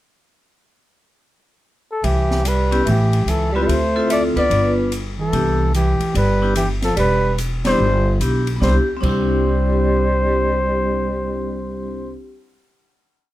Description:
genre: jazz, small-group swing and bop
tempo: 146 BPM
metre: 4/4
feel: swing 65% on 8ths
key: C major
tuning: A4 = 439 Hz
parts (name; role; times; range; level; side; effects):
- trumpet with bucket mute; melody; 1.9-12.1 s; G4 to D5; -22 LUFS; left 1 dB; none
- breathy tenor saxophone; second line; 2.0-12.1 s; E3 to B3; -23 LUFS; right 3 dB; none
- upright bass; bass; 2.0-12.1 s; E1 to D2; -20 LUFS; equal; none
- open jazz drum kit; drums; 2.0-9.2 s; crash cymbal, hi-hat, kick drum, ride cymbal, snare drum; -28 LUFS; left 1 dB; none
- vibraphone with medium hard mallets; accompaniment; 2.7-12.2 s; B3 to B4; -22 LUFS; left 1 dB; none
room: little or no reverb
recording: close, detailed microphones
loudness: -16 LUFS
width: side -15 dB against mid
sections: 0.4-2.0 pickup bar; 2.0-8.6 A section; 8.6-11.9 final chord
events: band accent 7.6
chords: 0.4 N.C.; 2.0 Cmaj7; 2.9 A7; 3.7 Dm9; 4.5 G7; 5.3 Cmaj9; 8.6 Cadd9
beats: | 0.38 0.79 1.21 1.62 | 2.03 2.44 2.85 3.27 | 3.68 4.09 4.50 4.91 | 5.32 5.74 6.15 6.56 | 6.97 7.38 7.79 8.20 | 8.62 9.03 9.44 9.85 | 10.27 10.68 11.09 11.50

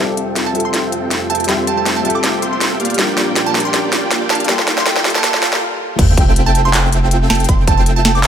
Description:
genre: future bass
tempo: 160 BPM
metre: 4/4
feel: swing 54% on 16ths, half-time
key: F major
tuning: A4 = 440 Hz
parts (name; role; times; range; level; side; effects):
- dark grand piano; accompaniment; 0.0-6.0 s; G3 to E5; -23 LUFS; left 4 dB; vintage 12-bit sampler grit, sidechain pumping, ping-pong delay
- airy breathy pad; sustained chords; 0.0-5.6 s; F2 to A4; -29 LUFS; right 2 dB; chorus, sidechain pumping
- concert harp; arpeggios; 0.0-2.1 s; D4 to D5; -34 LUFS; left 4 dB; none
- dense compressed supersaw; riff; 0.0-8.3 s; Bb3 to G5; -20 LUFS; right 1 dB; sidechain pumping, low-pass filter
- riser, swell and sub drop; sound effects; 1.3-7.5 s; none; -23 LUFS; right 1 dB; none
- trap drum kit; drums; 0.2-8.3 s; crash cymbal, handclaps, hi-hat, snare drum; -17 LUFS; equal; high-pass filter on snare, small room ambience, high-pass filter on hats, high-pass filter on cymbals
- glassy wavetable pluck; melody; 0.5-8.3 s; G5 to D6; -21 LUFS; right 4 dB; chorus, sidechain pumping
- airy dreamy lead; arpeggios; 6.0-8.3 s; G5; -24 LUFS; left 2 dB; chorus, sidechain pumping, ping-pong delay
- saturated sub bass; bass; 6.0-8.3 s; F1; -15 LUFS; equal; sidechain pumping
- electronic kick drum; drums; 6.0-7.8 s; none; -13 LUFS; equal; small room ambience
room: light reverb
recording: high-pass filter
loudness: -12 LUFS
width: side -8 dB against mid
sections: 0.0-6.0 A section; 6.0-8.3 B section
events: build-up 0.0-6.0; drum fill 0.0-5.6; filter sweep on supersaw synth 0.0-6.0; riser 1.3-5.6; swell 5.2-6.0; stop 5.6-6.0; drop 6.0-8.3; impact 6.0-7.5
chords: 0.0 Fmaj9; 2.8 Bb6; 4.5 Gm9; 6.0 Fmaj9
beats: 0.36 0.74 1.11 | 1.49 1.86 2.24 2.61 | 2.99 3.36 3.74 4.11 | 4.49 4.86 5.24 5.61 | 5.99 6.36 6.74 7.11 | 7.49 7.86 8.24

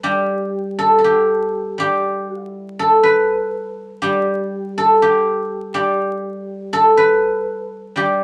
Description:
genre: chinese traditional, Chinese solo plucked strings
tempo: 60 BPM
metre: 4/4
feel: rubato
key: G gong mode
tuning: A4 = 440 Hz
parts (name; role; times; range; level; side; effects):
- guzheng; solo; 0.0-8.2 s; G3 to B4; -18 LUFS; equal; none
room: moderate studio reverb, RT60 0.8 s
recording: vinyl crackle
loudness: -17 LUFS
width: mono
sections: 0.0-8.2 A section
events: none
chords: none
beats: | 0.05 1.05 2.06 3.05 | 4.04 5.04 6.02 6.99 | 7.98

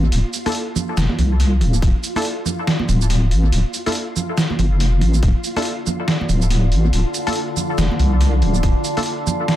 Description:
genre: deep dubstep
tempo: 141 BPM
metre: 4/4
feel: swing 59% on 16ths, half-time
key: D minor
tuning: A4 = 439 Hz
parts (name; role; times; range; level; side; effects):
- deep soft wobble bass; bass; 0.0-8.7 s; D1 to C2; -15 LUFS; equal; chorus
- congas; percussion; 0.0-9.4 s; none; -26 LUFS; right 4 dB; dub echo
- flickering grainy texture; texture; 0.0-9.6 s; F4; -30 LUFS; left 1 dB; built-in reverb
- trip hop sampler-style drum kit; drums; 0.1-9.6 s; hi-hat, shaker, snare drum; -24 LUFS; right 1 dB; dub echo
- filtered dub chord stab; stabs; 0.5-9.1 s; D4 to A4; -27 LUFS; left 3 dB; chorus, dub echo
- electronic kick drum; drums; 1.8-1.9, 5.2-5.3, 8.6-8.7 s; none; -17 LUFS; equal; none
- overtone-sweeping drone; sustained chords; 5.7-9.6 s; D3 to D4; -26 LUFS; left 1 dB; chorus, built-in reverb
room: little or no reverb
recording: echo-heavy mix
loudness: -16 LUFS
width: side -13 dB against mid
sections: 0.0-9.6 A section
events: none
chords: 0.0 Dmadd9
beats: | 0.12 0.55 0.97 1.40 | 1.82 2.25 2.67 3.10 | 3.53 3.95 4.38 4.80 | 5.23 5.65 6.08 6.50 | 6.93 7.36 7.78 8.21 | 8.63 9.06 9.48

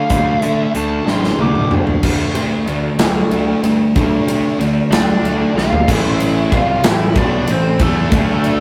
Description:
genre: quiet-loud alternative rock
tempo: 62 BPM (dotted quarters)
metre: 6/8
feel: straight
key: unclear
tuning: A4 = 441 Hz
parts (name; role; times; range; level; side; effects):
- biting lead guitar; melody; 0.0-1.7, 4.9-8.6 s; A3 to D6; -23 LUFS; equal; overdrive
- fuzz guitar; riff; 0.0-8.6 s; A2 to E4; -20 LUFS; equal; distortion
- fuzz picked electric bass; bass; 0.1-8.6 s; A1 to D3; -24 LUFS; equal; overdrive
- big rock drum kit; drums; 0.1-8.6 s; crash cymbal, hi-hat, kick drum, ride cymbal, snare drum, toms; -19 LUFS; equal; none
room: moderate studio reverb, RT60 0.5 s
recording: rough rehearsal-room recording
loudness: -15 LUFS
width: mono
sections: 0.0-2.0 A section; 2.0-5.9 B section; 5.9-8.6 C section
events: lead electric guitar solo 0.0-2.0; drum fill 1.1-2.0, 5.6-5.9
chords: 0.0 Dm; 2.0 D5; 5.9 Am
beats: | 0.10 1.06 | 2.03 2.99 | 3.96 4.92 | 5.88 6.84 | 7.80

